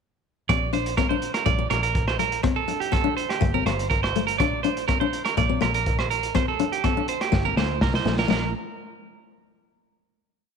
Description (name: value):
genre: highlife guitar band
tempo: 123 BPM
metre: 4/4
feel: straight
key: Bb major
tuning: A4 = 436 Hz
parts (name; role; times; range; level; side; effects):
- fingerpicked steel-string acoustic guitar; accompaniment; 0.5-8.4 s; A3 to D4; -27 LUFS; left 12 dB; none
- clean electric guitar; arpeggios; 0.5-8.5 s; G4 to D5; -25 LUFS; right 11 dB; slapback echo
- fingered electric bass; bass; 0.5-8.5 s; F1 to D2; -29 LUFS; equal; none
- crunchy breakbeat drum kit; drums; 0.5-8.4 s; crash cymbal, hi-hat, kick drum, rim click, snare drum; -26 LUFS; equal; none
room: moderate echo chamber reverb, RT60 2.0 s, small room ambience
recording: 1960s-style stereo with parts hard left and right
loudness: -21 LUFS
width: side -6 dB against mid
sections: 0.5-8.3 groove; 8.3-10.2 final note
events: drum fill 7.3-8.3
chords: 0.5 Bb; 2.4 F; 3.4 Gm; 4.4 Bb; 6.4 F; 7.3 Gm; 8.3 N.C.